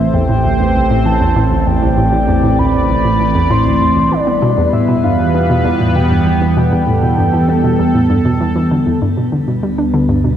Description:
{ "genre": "ambient, sequencer-driven space music", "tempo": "98 BPM", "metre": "4/4", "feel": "straight", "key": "unclear", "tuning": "A4 = 440 Hz", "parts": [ { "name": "soft octave-layered synth lead", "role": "melody", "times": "0.0-8.4 s", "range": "D5 to C6", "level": "-18 LUFS", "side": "left 1 dB", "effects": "chorus, shimmer reverb, tape echo" }, { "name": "sweeping resonant pad", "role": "sustained chords", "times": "0.0-10.4 s", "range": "E3 to D5", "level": "-15 LUFS", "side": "right 1 dB", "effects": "chorus, shimmer reverb" }, { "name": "hollow square pluck", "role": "riff", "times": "0.0-10.3 s", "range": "C2 to D4", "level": "-16 LUFS", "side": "equal", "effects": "chorus, tape echo" }, { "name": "analog drone", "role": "bass", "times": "0.0-10.4 s", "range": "A1 to E2", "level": "-20 LUFS", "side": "equal", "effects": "chorus, tube saturation" } ], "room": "wet concert hall reverb, RT60 2.2 s", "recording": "dark, warm production", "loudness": "-11 LUFS", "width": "side -10 dB against mid", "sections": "0.0-9.0 A section; 9.0-10.4 B section", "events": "none", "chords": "0.0 Am; 4.1 Em; 9.0 G/D" }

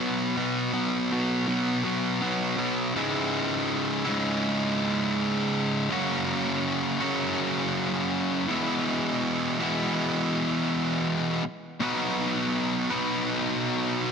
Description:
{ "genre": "rock", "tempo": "81 BPM", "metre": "4/4", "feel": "straight", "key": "C# dorian", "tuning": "A4 = 440 Hz", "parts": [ { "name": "fuzz guitar", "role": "solo", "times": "0.0-14.1 s", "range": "C#2 to B4", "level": "-24 LUFS", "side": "equal", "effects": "distortion" } ], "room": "light reverb, digital ambience", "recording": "dense, heavily limited modern master", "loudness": "-24 LUFS", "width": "side -6 dB against mid", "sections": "0.0-3.0 A section; 3.0-14.1 B section", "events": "none", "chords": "0.0 B5; 3.0 C#m; 5.9 F#; 8.5 E; 11.8 B" }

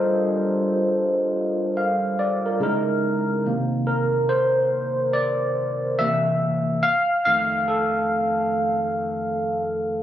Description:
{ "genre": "R&B", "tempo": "71 BPM", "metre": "4/4", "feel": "swing 62% on 16ths", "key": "C dorian", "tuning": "A4 = 439 Hz", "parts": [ { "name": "overdriven tine electric piano", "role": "solo", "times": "0.0-10.0 s", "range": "F2 to F5", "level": "-20 LUFS", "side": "equal", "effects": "lush chorus" } ], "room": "moderate studio ambience, RT60 0.5 s", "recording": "recorded on a phone in the room, club reverb", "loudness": "-20 LUFS", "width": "side -11 dB against mid", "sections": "0.0-3.5 A section; 3.5-10.0 B section", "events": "tine electric piano solo 3.5-10.0", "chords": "0.0 Gm11; 2.6 Dbm69; 3.5 Cm9; 6.0 C7; 6.8 F7" }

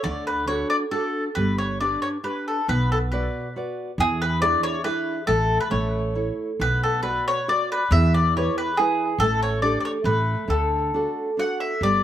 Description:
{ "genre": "italian folk, Italian serenade", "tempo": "138 BPM", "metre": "3/4", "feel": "rubato", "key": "D major", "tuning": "A4 = 440 Hz", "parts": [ { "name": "mandolin", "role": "melody", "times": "0.0-12.0 s", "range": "G#4 to F#5", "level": "-23 LUFS", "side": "left 1 dB", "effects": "slapback echo" }, { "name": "nylon-string guitar", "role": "accompaniment", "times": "0.0-12.0 s", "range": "D3 to D5", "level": "-27 LUFS", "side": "right 2 dB", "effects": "slapback echo" }, { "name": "upright bass", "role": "bass", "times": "0.1-12.0 s", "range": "G1 to E2", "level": "-24 LUFS", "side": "equal", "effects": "none" } ], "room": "little or no reverb", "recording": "recorded outdoors, with no room sound", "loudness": "-21 LUFS", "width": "side -11 dB against mid", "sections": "0.0-11.8 A section", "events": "none", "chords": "0.1 D; 1.4 G; 2.7 Bm; 4.0 E7; 5.3 Asus2; 5.7 A; 6.6 Bm; 7.9 E; 9.2 A7sus4; 10.1 Asus2; 10.5 D" }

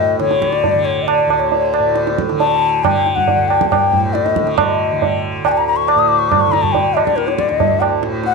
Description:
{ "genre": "indian classical, Hindustani", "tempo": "138 BPM", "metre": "4/4", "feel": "straight", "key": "unclear", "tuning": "A4 = 443 Hz", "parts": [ { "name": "bansuri", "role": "melody", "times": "0.0-8.3 s", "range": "Bb4 to Eb6", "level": "-16 LUFS", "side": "left 9 dB", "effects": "none" }, { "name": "tanpura", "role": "drone", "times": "0.0-8.3 s", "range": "D2 to D3", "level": "-21 LUFS", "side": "right 2 dB", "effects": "none" }, { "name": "tabla", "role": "percussion", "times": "0.2-8.3 s", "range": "none", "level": "-17 LUFS", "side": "right 10 dB", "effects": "none" } ], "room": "moderate echo chamber reverb, RT60 1.4 s, small room ambience", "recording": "1960s-style stereo with parts hard left and right", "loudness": "-13 LUFS", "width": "side -3 dB against mid", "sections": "0.0-8.3 A section", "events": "speeding up 0.0-8.3", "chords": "none" }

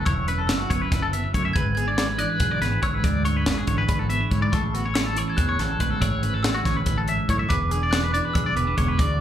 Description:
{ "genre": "math rock and midwest emo", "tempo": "282 BPM (eighths)", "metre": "7/8", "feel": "straight", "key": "A major", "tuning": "A4 = 440 Hz", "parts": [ { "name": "glockenspiel with soft plastic mallets", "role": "melody", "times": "0.0-9.2 s", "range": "B5 to G#6", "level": "-29 LUFS", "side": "right 1 dB", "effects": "slapback echo, digital delay" }, { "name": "mellow electric guitar", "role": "accompaniment", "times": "0.0-9.2 s", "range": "E2 to G#4", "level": "-29 LUFS", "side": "right 5 dB", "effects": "none" }, { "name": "twangy electric guitar", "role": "arpeggios", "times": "0.0-9.2 s", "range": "F#4 to E5", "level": "-28 LUFS", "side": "left 4 dB", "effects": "tremolo, slapback echo" }, { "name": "mellow fretless electric bass", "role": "bass", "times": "0.0-9.2 s", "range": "E1 to A2", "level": "-26 LUFS", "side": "left 1 dB", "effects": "none" }, { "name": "crisp fusion drum kit", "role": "drums", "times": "0.1-9.1 s", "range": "hi-hat, kick drum, snare drum", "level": "-25 LUFS", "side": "equal", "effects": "none" } ], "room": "little or no reverb", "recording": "live gig heard through the venue's PA, club reverb", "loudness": "-20 LUFS", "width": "side -10 dB against mid", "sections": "0.0-9.2 A section", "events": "none", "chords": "0.0 F#m7; 1.6 E7/G#; 4.5 Amaj7; 7.5 E7" }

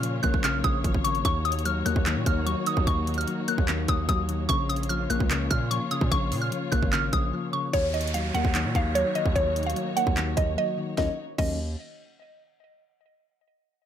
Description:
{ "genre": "hip hop, trap", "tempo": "148 BPM", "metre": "4/4", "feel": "half-time", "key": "Eb minor", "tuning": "A4 = 440 Hz", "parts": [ { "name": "mallet-like synth pluck", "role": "melody", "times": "0.0-11.6 s", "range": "Db5 to Gb6", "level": "-28 LUFS", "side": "right 1 dB", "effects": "chorus, phaser, tape echo" }, { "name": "soft electric-piano-like synth keys", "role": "accompaniment", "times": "0.0-11.6 s", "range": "Db3 to Db4", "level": "-31 LUFS", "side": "left 5 dB", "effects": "chorus" }, { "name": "muted studio string section", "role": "sustained chords", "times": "0.0-11.2 s", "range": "Bb3 to Db5", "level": "-35 LUFS", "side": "left 1 dB", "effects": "none" }, { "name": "distorted 808-style bass", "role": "bass", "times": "0.0-11.8 s", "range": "Ab1 to Bb2", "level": "-29 LUFS", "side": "right 1 dB", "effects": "distortion" }, { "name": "trap drum kit", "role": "drums", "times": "0.0-11.5 s", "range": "crash cymbal, handclaps, hi-hat, kick drum, snare drum", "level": "-28 LUFS", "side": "right 1 dB", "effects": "overdrive" }, { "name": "downlifter", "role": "sound effects", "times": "7.7-11.0 s", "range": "none", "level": "-37 LUFS", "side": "right 2 dB", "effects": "none" } ], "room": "little or no reverb", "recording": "none", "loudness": "-23 LUFS", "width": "side -9 dB against mid", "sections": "0.0-7.7 A section; 7.7-11.0 B section; 11.0-12.6 C section", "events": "break 7.3-7.7, 10.6-11.0", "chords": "0.0 Bbm; 1.2 Ebm7; 4.5 Bbm; 7.7 Ebm7" }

